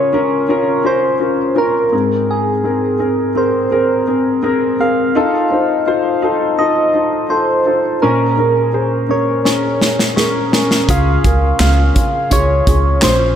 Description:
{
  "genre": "piano-driven pop",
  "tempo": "84 BPM",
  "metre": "4/4",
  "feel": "straight",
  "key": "Db major",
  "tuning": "A4 = 440 Hz",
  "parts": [
    { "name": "soft struck synth lead", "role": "melody", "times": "0.0-13.4 s", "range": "Ab4 to F5", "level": "-17 LUFS", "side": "right 1 dB", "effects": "chorus, tape echo" },
    { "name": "dark grand piano", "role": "accompaniment", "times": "0.0-13.4 s", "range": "Ab2 to C5", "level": "-15 LUFS", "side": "left 1 dB", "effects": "analog chorus" },
    { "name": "natural country drum kit", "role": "drums", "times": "9.5-13.2 s", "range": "handclaps, hi-hat, kick drum, snare drum", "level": "-16 LUFS", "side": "equal", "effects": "none" },
    { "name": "upright bass", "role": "bass", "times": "10.9-13.3 s", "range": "Bb1 to Db3", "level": "-15 LUFS", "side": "right 1 dB", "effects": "none" }
  ],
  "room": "wet church reverb, RT60 3.2 s",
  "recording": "dreamy mix soaked in reverb",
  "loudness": "-12 LUFS",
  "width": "side -9 dB against mid",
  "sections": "0.0-13.4 A section",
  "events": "drum fill 9.4-10.9",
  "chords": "0.0 Db; 1.9 Abadd9; 5.2 F7; 8.0 Bbm7; 10.9 Db",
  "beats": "0.14 0.85 1.57 | 2.29 3.00 3.72 4.43 | 5.15 5.87 6.58 7.30 | 8.02 8.73 9.45 10.16 | 10.88 11.60 12.31 13.03"
}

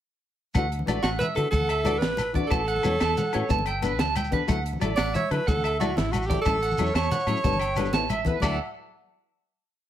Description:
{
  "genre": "highlife guitar band",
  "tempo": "122 BPM (dotted quarters)",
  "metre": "12/8",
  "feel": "straight",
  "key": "D major",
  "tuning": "A4 = 436 Hz",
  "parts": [
    { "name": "agogo bells", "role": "percussion", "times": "0.5-8.5 s", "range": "none", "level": "-36 LUFS", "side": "left 10 dB", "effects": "none" },
    { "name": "congas", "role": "percussion", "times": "0.5-8.6 s", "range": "none", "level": "-32 LUFS", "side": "left 2 dB", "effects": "none" },
    { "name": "shekere", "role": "percussion", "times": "0.5-8.6 s", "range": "none", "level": "-34 LUFS", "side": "right 2 dB", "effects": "none" },
    { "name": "nylon-string guitar", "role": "accompaniment", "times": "0.6-8.6 s", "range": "E3 to A4", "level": "-32 LUFS", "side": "left 7 dB", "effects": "none" },
    { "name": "electric guitar at the edge of break-up", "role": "arpeggios", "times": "0.6-8.6 s", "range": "B4 to A5", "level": "-30 LUFS", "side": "right 5 dB", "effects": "tremolo, slapback echo" },
    { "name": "fingered electric bass", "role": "bass", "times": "0.6-8.6 s", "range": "G1 to D3", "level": "-30 LUFS", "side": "equal", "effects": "none" },
    { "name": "compact cocktail drum kit", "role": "drums", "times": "0.6-8.5 s", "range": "crash cymbal, hi-hat, kick drum, snare drum", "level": "-29 LUFS", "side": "equal", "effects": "none" },
    { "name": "bright alto saxophone", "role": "melody", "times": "1.0-8.6 s", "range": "E4 to D5", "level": "-27 LUFS", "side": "right 1 dB", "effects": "none" }
  ],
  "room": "light reverb",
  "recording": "none",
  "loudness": "-22 LUFS",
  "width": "side -11 dB against mid",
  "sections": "0.5-8.4 A section; 8.4-9.9 final chord",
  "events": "none",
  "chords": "0.5 Dadd9; 2.5 A6; 3.5 Gadd9; 4.5 Dadd9; 6.5 A6; 7.4 Gadd9; 7.9 Asus2; 8.4 Dadd9",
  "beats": "| 0.55 1.04 1.53 2.02 | 2.52 3.01 3.50 3.99 | 4.49 4.98 5.47 5.96 | 6.46 6.95 7.44 7.93 | 8.42"
}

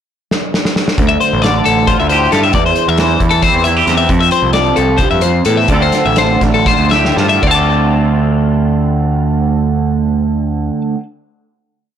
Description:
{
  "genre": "math rock and midwest emo",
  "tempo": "228-269 BPM (eighths)",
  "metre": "7/8",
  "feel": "straight",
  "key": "D minor",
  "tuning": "A4 = 440 Hz",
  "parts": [
    { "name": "loose indie drum kit", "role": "drums", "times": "0.3-7.6 s", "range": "crash cymbal, hi-hat, kick drum, snare drum", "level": "-18 LUFS", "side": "equal", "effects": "none" },
    { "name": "twangy electric guitar", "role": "accompaniment", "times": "1.0-11.0 s", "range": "D2 to A4", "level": "-15 LUFS", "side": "right 5 dB", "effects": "analog chorus" },
    { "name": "growling picked electric bass", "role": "bass", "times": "1.0-10.7 s", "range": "A1 to A2", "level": "-16 LUFS", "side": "equal", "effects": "overdrive" },
    { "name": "twelve-string electric guitar", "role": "arpeggios", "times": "1.1-10.8 s", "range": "A4 to D6", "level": "-14 LUFS", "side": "left 8 dB", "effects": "plate reverb" }
  ],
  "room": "moderate small room reverb, RT60 0.5 s",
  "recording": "blown-out, overdriven recording, overdrive",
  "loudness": "-10 LUFS",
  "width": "side -9 dB against mid",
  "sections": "0.0-1.0 pickup bar; 1.0-7.4 A section; 7.4-11.1 final chord",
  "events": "drum fill 0.3-1.0, 6.7-7.4; slowing down 4.1-7.4",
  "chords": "0.0 N.C.; 1.0 Dm9; 2.5 Am7/E (rootless); 4.1 Fmaj9; 5.7 Dm9; 7.4 Dm7",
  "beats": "0.08 0.30 0.52 0.75 | 0.97 1.19 1.42 1.64 1.86 2.09 2.31 | 2.53 2.76 2.98 3.20 3.43 3.65 3.88 | 4.10 4.32 4.55 4.78 5.00 5.23 5.46 | 5.70 5.94 6.18 6.42 6.67 6.92 7.17 | 7.43 7.70 7.96 8.22 8.48 8.75 9.01 | 9.27 9.53 9.80 10.06 10.32 10.58 10.85"
}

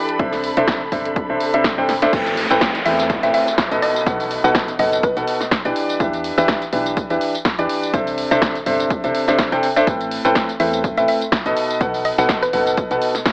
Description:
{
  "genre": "piano house",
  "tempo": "124 BPM",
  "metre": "4/4",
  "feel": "swing 55% on 16ths",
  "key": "A dorian",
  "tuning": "A4 = 445 Hz",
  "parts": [
    { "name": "rich studio violin section", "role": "sustained chords", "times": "0.0-2.1 s", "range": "A4 to B5", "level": "-30 LUFS", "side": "equal", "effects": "vintage 12-bit sampler grit, sidechain pumping" },
    { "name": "clear concert grand piano", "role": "riff", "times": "0.0-13.1 s", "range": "A2 to G5", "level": "-21 LUFS", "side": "equal", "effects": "sidechain pumping" },
    { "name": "punchy analog drum machine", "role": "drums", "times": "0.1-13.3 s", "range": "crash cymbal, hi-hat, snare drum, tambourine", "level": "-26 LUFS", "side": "equal", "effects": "none" },
    { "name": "solid FM bass", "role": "bass", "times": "0.2-13.0 s", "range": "F#1 to E2", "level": "-32 LUFS", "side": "equal", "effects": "sidechain pumping" },
    { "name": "electronic kick drum", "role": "drums", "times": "0.2-13.3 s", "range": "none", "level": "-26 LUFS", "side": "equal", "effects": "none" },
    { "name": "downlifter", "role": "sound effects", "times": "2.1-6.0 s", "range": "none", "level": "-28 LUFS", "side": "equal", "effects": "none" },
    { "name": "mallet-like synth pluck", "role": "melody", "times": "2.9-5.7, 10.6-13.1 s", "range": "B4 to E5", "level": "-24 LUFS", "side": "equal", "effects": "chorus, dub echo" }
  ],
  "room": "light reverb",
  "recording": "AM radio sound",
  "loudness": "-19 LUFS",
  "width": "mono",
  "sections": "0.0-2.1 A section; 2.1-13.3 B section",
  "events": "drum fill 1.9; drop 2.1-13.3",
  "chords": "0.2 C69; 2.1 Am9; 3.8 B7; 5.8 Em7; 7.9 C69; 9.9 Am9; 11.6 B7",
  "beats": "| 0.20 0.68 1.16 1.65 | 2.13 2.61 3.10 3.58 | 4.07 4.55 5.03 5.52 | 6.00 6.49 6.97 7.45 | 7.94 8.42 8.90 9.39 | 9.87 10.36 10.84 11.32 | 11.81 12.29 12.78 13.26"
}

